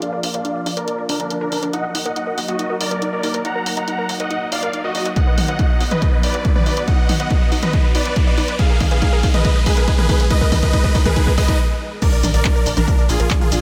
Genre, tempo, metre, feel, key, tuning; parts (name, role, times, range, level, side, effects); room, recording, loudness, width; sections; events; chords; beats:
uplifting trance; 140 BPM; 4/4; straight; Eb harmonic minor; A4 = 440 Hz
supersaw chords; melody; 0.0-13.6 s; D4 to Bb5; -25 LUFS; equal; sidechain pumping, low-pass filter, dub echo
analog string pad; sustained chords; 0.0-13.6 s; F3 to Eb4; -32 LUFS; equal; ensemble chorus, sidechain pumping
unison pluck; arpeggios; 0.0-13.6 s; D4 to Eb5; -30 LUFS; equal; sidechain pumping, dub echo
punchy analog drum machine; drums; 0.0-13.6 s; crash cymbal, handclaps, hi-hat, shaker, toms; -27 LUFS; equal; sidechain pumping on hats, sidechain pumping on toms, sidechain pumping on cymbals, sidechain pumping on perc
riser and impact; sound effects; 0.2-13.6 s; -33 LUFS; equal
tight sequencer bass; bass; 0.2-13.6 s; Ab1 to Eb2; -29 LUFS; equal
electronic kick drum; drums; 5.2-13.4 s; -18 LUFS; equal
light reverb, digital ambience; -18 LUFS; mono
0.0-12.0 A section; 12.0-13.6 B section
build-up 0.0-12.0; filter sweep on supersaw synth 0.0-12.0; filter sweep on synth arpeggio sound 0.0-12.0; riser 0.2-11.6; drum fill 5.2-11.6; stop 11.6-12.0; drop 12.0-13.6; impact 12.0-13.6
0.0 Bb; 1.7 Ebm; 5.2 B; 8.6 Abmadd9; 12.0 Bb
| 0.02 0.45 0.88 1.30 | 1.73 2.16 2.59 3.02 | 3.45 3.88 4.30 4.73 | 5.16 5.59 6.02 6.45 | 6.88 7.30 7.73 8.16 | 8.59 9.02 9.45 9.88 | 10.30 10.73 11.16 11.59 | 12.02 12.45 12.88 13.30